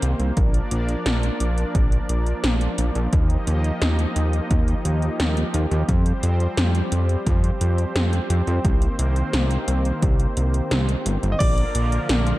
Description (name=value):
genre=synthwave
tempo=87 BPM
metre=4/4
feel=straight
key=unclear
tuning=A4 = 440 Hz
part: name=brassy analog pad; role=sustained chords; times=0.0-12.4 s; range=D3 to Eb5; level=-27 LUFS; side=equal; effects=chorus, sidechain pumping
part: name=fat analog bass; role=bass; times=0.0-12.3 s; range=G1 to F2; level=-21 LUFS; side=equal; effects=none
part: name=80s electronic pad drums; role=drums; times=0.0-12.4 s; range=crash cymbal, hi-hat, snare drum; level=-27 LUFS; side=equal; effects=none
part: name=electronic kick drum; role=drums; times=0.4-11.5 s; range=none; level=-20 LUFS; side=equal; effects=none
part: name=warm electric grand piano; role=melody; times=11.3-12.4 s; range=D5 to Eb5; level=-28 LUFS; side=left 1 dB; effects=vintage 12-bit sampler grit, digital delay
part: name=soft synth bell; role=second line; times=11.4-12.4 s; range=D6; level=-31 LUFS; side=right 2 dB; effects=chorus
room=digital ambience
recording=dark, warm production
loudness=-19 LUFS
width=side -17 dB against mid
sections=0.0-11.4 A section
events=none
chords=0.4 Bb; 3.1 Ebadd9; 5.9 Fsus2; 8.6 Cm7; 11.4 Bb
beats=| 0.37 1.06 1.75 2.44 | 3.13 3.82 4.51 5.20 | 5.89 6.58 7.27 7.96 | 8.64 9.34 10.03 10.71 | 11.40 12.09